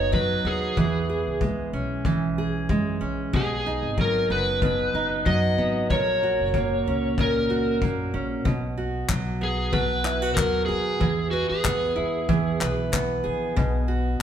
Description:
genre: acoustic pop.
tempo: 94 BPM.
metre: 4/4.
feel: swing 55% on 16ths.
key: B major.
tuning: A4 = 440 Hz.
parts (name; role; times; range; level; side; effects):
overdriven slide guitar; melody; 0.0-12.7 s; F#4 to D#5; -25 LUFS; equal; none.
picked steel-string acoustic guitar; accompaniment; 0.0-14.2 s; A#2 to B4; -26 LUFS; right 2 dB; none.
upright bass; bass; 0.0-14.2 s; F#1 to F#2; -30 LUFS; left 1 dB; none.
unplugged drum kit; drums; 0.1-13.7 s; handclaps, kick drum; -27 LUFS; left 3 dB; none.
room: wet large studio reverb, RT60 1.3 s.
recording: band playing live in one room.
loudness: -22 LUFS.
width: side -9 dB against mid.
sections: 0.0-8.5 A section; 8.5-14.2 B section.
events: none.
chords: 0.0 B6; 0.8 E6; 3.3 B6; 5.9 F#; 8.5 B6; 11.0 E; 13.6 B5.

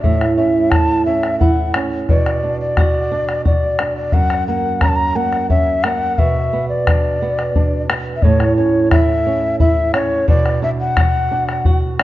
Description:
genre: andean folk, Andean ensemble.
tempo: 88 BPM.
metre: 3/4.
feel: straight.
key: B minor.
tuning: A4 = 441 Hz.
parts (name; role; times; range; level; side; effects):
mellow large quena; melody; 0.0-12.0 s; C#5 to A#5; -19 LUFS; left 2 dB; none.
flamenco guitar; accompaniment; 0.0-12.0 s; F#2 to F#4; -18 LUFS; right 3 dB; none.
bombo; percussion; 0.0-12.0 s; none; -17 LUFS; left 1 dB; none.
room: wet recital hall reverb, RT60 1.8 s.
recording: dark, warm production, nothing above 7.5 kHz.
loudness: -14 LUFS.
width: side -15 dB against mid.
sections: 0.0-12.0 A section.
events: none.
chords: 0.0 A; 2.1 Bm; 4.1 F#; 6.2 Bm; 8.2 A; 10.3 Bm.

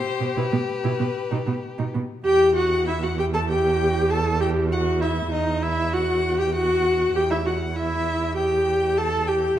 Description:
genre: quick classical-period movement for string quartet.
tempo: 98 BPM.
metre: 4/4.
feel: straight.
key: E minor.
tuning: A4 = 440 Hz.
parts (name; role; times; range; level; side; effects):
rich violin; melody; 0.0-9.6 s; B4 to A5; -33 LUFS; left 8 dB; none.
rich violin; second line; 0.0-9.3 s; G4 to A5; -30 LUFS; left 3 dB; none.
warm viola; accompaniment; 0.2-9.6 s; B3 to A4; -22 LUFS; equal; none.
rich cello; bass; 0.2-9.5 s; E2 to B2; -26 LUFS; right 4 dB; none.
room: wet recital hall reverb, RT60 1.4 s.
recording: dark, warm production.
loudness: -20 LUFS.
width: side -11 dB against mid.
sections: 0.0-2.3 A section; 2.3-9.6 B section.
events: none.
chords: 0.0 Em/B; 1.0 B; 2.3 Em.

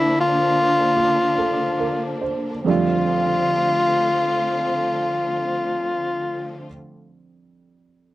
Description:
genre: jazz ballad.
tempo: 44-53 BPM.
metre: 4/4.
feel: swing 68% on 8ths.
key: F major.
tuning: A4 = 439 Hz.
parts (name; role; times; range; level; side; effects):
breathy tenor saxophone; melody; 0.0-6.7 s; E4 to F4; -19 LUFS; left 1 dB; none.
warm baby grand piano; accompaniment; 0.0-8.1 s; F2 to C5; -26 LUFS; right 5 dB; none.
warm symphonic string section; sustained chords; 0.0-6.7 s; D3 to F4; -26 LUFS; left 1 dB; none.
room: light reverb.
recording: dry, close 1970s-style studio recording.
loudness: -18 LUFS.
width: side -16 dB against mid.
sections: 0.0-2.7 A section; 2.7-8.1 B section.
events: slowing down 0.0-2.7.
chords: 0.0 Bb; 2.7 F6.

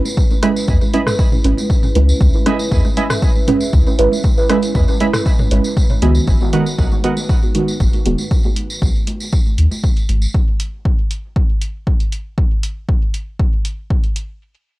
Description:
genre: dub techno.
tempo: 118 BPM.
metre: 4/4.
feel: straight.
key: G# minor.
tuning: A4 = 440 Hz.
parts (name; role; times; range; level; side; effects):
dark analog pad; sustained chords; 0.0-12.3 s; G#3 to B4; -26 LUFS; equal; chorus, phaser, sidechain pumping.
electronic congas and toms; percussion; 0.1-10.2 s; none; -28 LUFS; equal; none.
tambourine; percussion; 0.1-10.3 s; none; -30 LUFS; right 1 dB; none.
electronic kick drum; drums; 0.2-14.0 s; none; -15 LUFS; equal; none.
warbly lo-fi synth keys; riff; 0.4-7.1 s; A#4 to B5; -26 LUFS; right 3 dB; chorus, vintage 12-bit sampler grit, sidechain pumping, low-pass filter, dub echo.
deep mellow chord stab; stabs; 0.4-8.1 s; D#3 to B4; -19 LUFS; right 2 dB; chorus, phaser, sidechain pumping, dub echo.
punchy analog drum machine; drums; 0.4-14.3 s; hi-hat, rim click; -25 LUFS; equal; dub echo.
warm sub bass; bass; 0.7-10.3 s; D#1 to E2; -14 LUFS; equal; tube saturation, sidechain pumping.
room: little or no reverb.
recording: dry, gritty hardware recording.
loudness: -13 LUFS.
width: side -18 dB against mid.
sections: 0.0-6.3 A section; 6.3-14.4 B section.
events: filter sweep on synth stab 0.0-6.3.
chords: 0.0 C#m7; 6.3 G#m7.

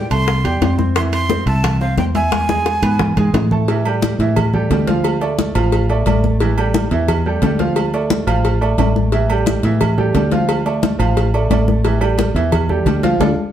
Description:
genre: latin, salsa.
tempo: 176 BPM.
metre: 4/4.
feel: straight.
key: A minor.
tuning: A4 = 440 Hz.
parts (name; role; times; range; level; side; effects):
breathy bright jazz flute; melody; 0.0-3.3 s; F5 to C6; -21 LUFS; right 3 dB; none.
bright baby grand piano; accompaniment; 0.0-13.3 s; E3 to E6; -20 LUFS; right 3 dB; none.
fingered electric bass; bass; 0.0-13.3 s; A1 to A2; -17 LUFS; equal; none.
bongos and cowbell; percussion; 0.1-13.3 s; none; -25 LUFS; left 4 dB; none.
congas; percussion; 0.1-13.3 s; none; -21 LUFS; left 3 dB; none.
timbales and agogo bells; percussion; 0.1-13.3 s; none; -26 LUFS; right 6 dB; none.
room: wet studio reverb, RT60 0.7 s.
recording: heard from further back in the room.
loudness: -14 LUFS.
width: side -10 dB against mid.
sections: 0.0-3.7 A section; 3.7-13.5 B section.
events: drum fill 2.3-3.7, 13.2-13.5; band accent 13.2-13.5.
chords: 0.0 Am7; 1.0 Fmaj7; 2.3 E; 3.7 A5; 5.0 Dm; 6.4 A5; 7.8 Dm; 9.1 A5; 10.5 Dm; 11.8 A5.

